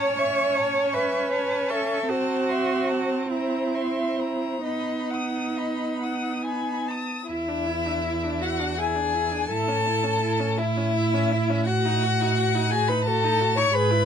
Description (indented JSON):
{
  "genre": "classical, slow romantic movement for string quartet",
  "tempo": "42-60 BPM (dotted quarters)",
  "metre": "6/8",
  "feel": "rubato",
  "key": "E major",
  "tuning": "A4 = 444 Hz",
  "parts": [
    { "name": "rich violin", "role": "melody", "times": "0.0-14.1 s", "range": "E5 to D#6", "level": "-29 LUFS", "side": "left 2 dB", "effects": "none" },
    { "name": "dark violin", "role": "second line", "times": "0.0-14.1 s", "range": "E4 to A5", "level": "-28 LUFS", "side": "left 5 dB", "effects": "none" },
    { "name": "warm viola", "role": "accompaniment", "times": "0.0-14.1 s", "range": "B3 to G#4", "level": "-30 LUFS", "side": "right 2 dB", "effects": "none" },
    { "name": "rich cello", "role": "bass", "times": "0.0-14.1 s", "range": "E2 to C#5", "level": "-26 LUFS", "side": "right 3 dB", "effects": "none" }
  ],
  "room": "little or no reverb",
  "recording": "close, detailed microphones",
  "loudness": "-22 LUFS",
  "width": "side -8 dB against mid",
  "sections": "0.0-7.3 A section; 7.3-14.1 B section",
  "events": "none",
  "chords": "0.0 A/C#; 2.1 Am/C; 3.3 C7; 4.6 B; 7.3 E7; 9.5 A; 11.7 B7/A (rootless)"
}